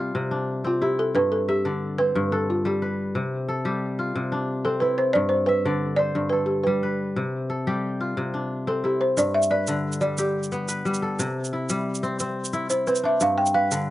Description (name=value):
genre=west african traditional, West African string and xylophone music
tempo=120 BPM (dotted quarters)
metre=12/8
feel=straight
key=G mixolydian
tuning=A4 = 440 Hz
part: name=kora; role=arpeggios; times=0.0-13.9 s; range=G2 to E5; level=-25 LUFS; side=left 2 dB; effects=none
part: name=balafon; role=melody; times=0.7-13.9 s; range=F4 to G5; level=-22 LUFS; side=right 1 dB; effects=slapback echo
part: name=tube shaker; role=percussion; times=9.2-13.8 s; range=none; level=-32 LUFS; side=right 4 dB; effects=none
room=little or no reverb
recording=recorded outdoors, with no room sound, nothing above 10.6 kHz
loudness=-22 LUFS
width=side -15 dB against mid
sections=0.0-9.2 A section; 9.2-13.9 B section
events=none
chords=0.0 C; 1.1 G; 3.1 C; 5.2 G; 7.2 C; 9.2 G; 11.2 C; 13.2 G